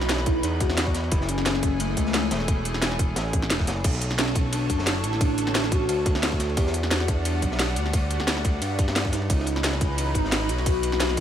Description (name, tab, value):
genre	liquid drum and bass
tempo	176 BPM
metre	4/4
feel	swing 54% on 16ths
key	unclear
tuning	A4 = 439 Hz
part	hollow clarinet-like synth lead	melody	0.0-11.2 s	A3 to G4	-28 LUFS	left 1 dB	phaser, analog chorus, ping-pong delay
part	lush unison pad	sustained chords	0.0-11.2 s	D3 to C#5	-32 LUFS	equal	chorus
part	smooth synth bass	bass	0.0-11.2 s	E1 to G2	-27 LUFS	equal	none
part	crunchy breakbeat drum kit	drums	0.0-11.2 s	ride cymbal, snare drum	-32 LUFS	equal	high-pass filter on cymbals, high-pass filter on snare, high-pass filter on room
part	drum and bass drum kit	drums	0.0-11.2 s	crash cymbal, hi-hat, ride cymbal, snare drum	-28 LUFS	equal	none
part	electronic kick drum	drums	0.3-11.2 s	none	-24 LUFS	equal	none
room	light reverb, digital ambience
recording	none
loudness	-22 LUFS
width	side -10 dB against mid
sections	0.0-11.2 A section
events	none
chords	0.0 C#m9 (rootless); 1.1 F#m9; 3.8 Bm9; 6.6 Em9; 9.3 C#m9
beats	0.09 0.43 0.78 | 1.12 1.46 1.80 2.14 | 2.48 2.82 3.16 3.50 | 3.84 4.18 4.53 4.87 | 5.21 5.55 5.89 6.23 | 6.57 6.91 7.25 7.59 | 7.93 8.28 8.62 8.96 | 9.30 9.64 9.98 10.32 | 10.66 11.00